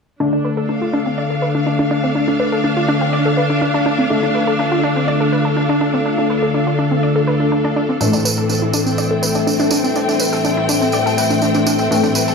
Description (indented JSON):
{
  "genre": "melodic techno",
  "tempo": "123 BPM",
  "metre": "4/4",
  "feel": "straight",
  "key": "D minor",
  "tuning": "A4 = 438 Hz",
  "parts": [
    { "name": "deep dark ambient pad", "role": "sustained chords", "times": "2.4-12.3 s", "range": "C4 to F5", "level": "-25 LUFS", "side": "left 2 dB", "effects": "chorus, built-in reverb" },
    { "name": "wide unison pluck", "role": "arpeggios", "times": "0.2-12.3 s", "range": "C4 to D5", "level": "-20 LUFS", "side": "equal", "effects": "cassette tape, dub echo" },
    { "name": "sync-sweep polysynth", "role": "stabs", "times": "0.2-12.3 s", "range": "A2 to D4", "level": "-19 LUFS", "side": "left 2 dB", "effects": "chorus, dub echo" },
    { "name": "warm studio string section", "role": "texture", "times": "0.2-12.3 s", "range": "C4 to G5", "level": "-20 LUFS", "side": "equal", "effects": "none" },
    { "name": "tambourine", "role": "percussion", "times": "8.0-12.3 s", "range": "none", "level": "-23 LUFS", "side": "right 3 dB", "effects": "none" }
  ],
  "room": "wet scoring stage reverb, RT60 1.5 s, studio reverb",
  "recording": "small room ambience",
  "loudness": "-14 LUFS",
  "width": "side -5 dB against mid",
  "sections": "0.2-12.3 A section",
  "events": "filter sweep on synth arpeggio sound 0.2-12.3; filter sweep on ambient pad 0.2-12.3",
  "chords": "0.2 Dm; 8.0 Am7",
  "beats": "| 0.20 0.69 1.18 1.67 | 2.15 2.64 3.13 3.62 | 4.10 4.59 5.08 5.57 | 6.05 6.54 7.03 7.52 | 8.01 8.49 8.98 9.47 | 9.96 10.45 10.93 11.42 | 11.91"
}